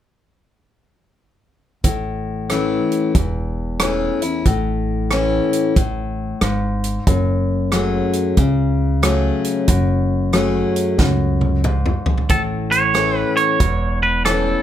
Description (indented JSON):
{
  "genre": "honky-tonk and classic country",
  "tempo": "92 BPM",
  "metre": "4/4",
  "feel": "swing 64% on 8ths",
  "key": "A major",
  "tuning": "A4 = 436 Hz",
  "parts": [
    { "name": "picked steel-string acoustic guitar", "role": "accompaniment", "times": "1.8-14.6 s", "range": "E2 to G#4", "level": "-19 LUFS", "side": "left 3 dB", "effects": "none" },
    { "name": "upright bass", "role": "bass", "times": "1.8-14.5 s", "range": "E1 to C#2", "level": "-22 LUFS", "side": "right 1 dB", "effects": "none" },
    { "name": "natural country drum kit", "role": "drums", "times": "1.8-14.4 s", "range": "hi-hat, kick drum, rim click, snare drum, toms", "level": "-19 LUFS", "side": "right 1 dB", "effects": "none" },
    { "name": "twangy electric guitar", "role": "melody", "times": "12.3-14.6 s", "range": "A4 to C#5", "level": "-18 LUFS", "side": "right 4 dB", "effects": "none" }
  ],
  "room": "light reverb",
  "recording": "none",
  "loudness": "-16 LUFS",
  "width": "side -11 dB against mid",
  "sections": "1.8-12.3 A section; 12.3-14.6 B section",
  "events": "drum fill 11.0-12.3",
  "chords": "1.8 A; 7.1 F#madd9; 12.3 A"
}